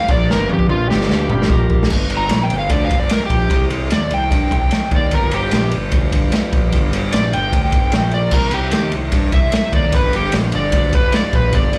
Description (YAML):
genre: blues rock power trio and southern rock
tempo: 149 BPM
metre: 4/4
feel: straight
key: G mixolydian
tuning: A4 = 440 Hz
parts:
  - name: overdriven slide guitar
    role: melody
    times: 0.0-11.8 s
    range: F4 to Bb5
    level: -23 LUFS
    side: equal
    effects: none
  - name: tonewheel organ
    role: sustained chords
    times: 0.0-11.8 s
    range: G3 to B4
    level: -32 LUFS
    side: equal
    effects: none
  - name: fuzz picked electric bass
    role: bass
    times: 0.1-11.8 s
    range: G1 to G2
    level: -22 LUFS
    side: equal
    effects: overdrive
  - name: raw garage drum kit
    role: drums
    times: 0.1-11.8 s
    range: crash cymbal, kick drum, ride cymbal, snare drum, toms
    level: -19 LUFS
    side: equal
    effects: none
room: light reverb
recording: live gig heard through the venue's PA, club reverb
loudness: -16 LUFS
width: mono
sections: 0.0-1.9 A section; 1.9-11.8 A section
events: electric slide guitar solo 0.0-11.8; drum fill 0.3-1.9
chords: 0.0 G7; 1.5 Bb5; 1.9 G7; 3.5 C7; 5.1 G7; 7.9 Bb5; 8.3 C7; 9.9 G7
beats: | 0.28 0.69 1.09 1.49 | 1.89 2.30 2.70 3.10 | 3.50 3.91 4.31 4.71 | 5.12 5.52 5.92 6.32 | 6.72 7.13 7.53 7.93 | 8.33 8.73 9.13 9.54 | 9.94 10.34 10.74 11.14 | 11.54